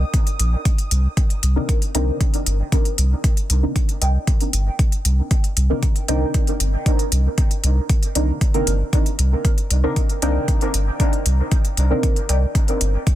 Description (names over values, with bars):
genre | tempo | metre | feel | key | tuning
dub techno | 116 BPM | 4/4 | straight | C minor | A4 = 439 Hz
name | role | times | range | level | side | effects
warbly dusty pluck | riff | 0.0-6.3, 10.2-12.5 s | Bb4 to G5 | -34 LUFS | right 1 dB | lush chorus, cassette tape, sidechain pumping, dub echo
warm sub bass | bass | 0.0-13.0 s | G1 to C2 | -17 LUFS | equal | sidechain pumping
bubbling stepped-filter texture | texture | 0.0-0.7 s | Eb6 | -37 LUFS | right 1 dB | chorus, built-in reverb, sidechain pumping
electronic hi-hat | drums | 0.1-13.2 s | none | -25 LUFS | left 2 dB | none
electronic kick drum | drums | 0.1-13.2 s | none | -18 LUFS | equal | none
deep mellow chord stab | stabs | 1.6-12.2 s | C4 to Bb4 | -25 LUFS | equal | chorus, phaser, sidechain pumping, dub echo
room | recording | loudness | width
little or no reverb | dense, heavily limited modern master | -17 LUFS | side -13 dB against mid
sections
0.7-13.2 A section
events
none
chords
0.0 Cm9 (rootless); 0.7 Cm9